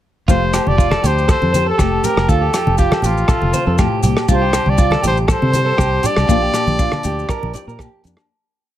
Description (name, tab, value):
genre	highlife guitar band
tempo	120 BPM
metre	4/4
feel	straight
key	F major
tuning	A4 = 440 Hz
part	warm trumpet	melody	0.3-8.1 s	F4 to D5	-20 LUFS	left 1 dB	plate reverb
part	nylon-string guitar	accompaniment	0.3-8.3 s	F2 to G4	-24 LUFS	left 6 dB	plate reverb
part	electric guitar at the edge of break-up	arpeggios	0.3-8.1 s	F4 to D5	-21 LUFS	right 6 dB	spring reverb, slapback echo, plate reverb
part	fingered electric bass	bass	0.3-8.1 s	F1 to C3	-19 LUFS	equal	none
part	warm soul drum kit	drums	0.3-8.3 s	hi-hat, kick drum, rim click	-17 LUFS	equal	none
part	maracas	percussion	0.3-8.3 s	none	-30 LUFS	left 11 dB	none
part	agogo bells	percussion	0.5-8.3 s	none	-28 LUFS	left 3 dB	none
part	congas	percussion	0.7-8.2 s	none	-22 LUFS	right 1 dB	none
room	light reverb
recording	none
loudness	-13 LUFS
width	side -12 dB against mid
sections	0.3-8.3 A section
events	fade-out 6.3-8.3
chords	0.3 Fadd9; 4.3 Csus2; 6.3 Bb6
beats	| 0.28 0.78 1.28 1.78 | 2.28 2.78 3.28 3.78 | 4.28 4.78 5.28 5.78 | 6.29 6.79 7.29 7.79